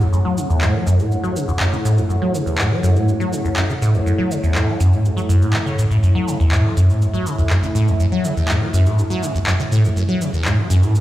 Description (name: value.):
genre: acid house.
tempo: 122 BPM.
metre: 4/4.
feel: straight.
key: F# minor pentatonic.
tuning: A4 = 436 Hz.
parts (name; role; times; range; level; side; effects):
dark analog pad; sustained chords; 0.0-11.0 s; A3 to F#5; -26 LUFS; equal; chorus.
liquid acid bass; riff; 0.0-11.0 s; E2 to F#3; -16 LUFS; equal; phaser, wide subtle chorus, analog delay.
electronic shaker and handclaps; drums; 0.0-11.0 s; none; -26 LUFS; equal; none.
room: light reverb.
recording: played on a big sound system in a bare room, large studio reverb.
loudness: -15 LUFS.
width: side -14 dB against mid.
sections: 0.0-11.0 A section.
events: none.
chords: 0.0 F#m7.